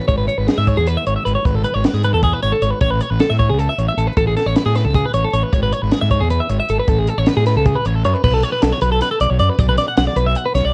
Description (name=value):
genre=math rock and midwest emo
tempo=309 BPM (eighths)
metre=7/8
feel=straight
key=A major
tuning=A4 = 441 Hz
part: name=twelve-string electric guitar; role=arpeggios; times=0.0-10.7 s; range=G#4 to F#5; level=-21 LUFS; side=equal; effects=none
part: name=fuzz fingered electric bass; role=bass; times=0.1-10.7 s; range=G#1 to A2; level=-20 LUFS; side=equal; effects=overdrive
part: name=compact cocktail drum kit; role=drums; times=0.1-10.6 s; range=crash cymbal, hi-hat, kick drum, snare drum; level=-22 LUFS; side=equal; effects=vintage 12-bit sampler grit
room=light reverb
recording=worn, warbling old tape, cassette tape, vinyl crackle, warbly pitch drift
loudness=-17 LUFS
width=mono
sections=0.0-8.2 A section; 8.2-10.7 B section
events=none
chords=0.1 C#m7/G#; 2.8 Amaj7; 5.5 C#m7/G#; 6.9 Amaj9; 8.2 Bm9; 9.6 Esus2/B (rootless)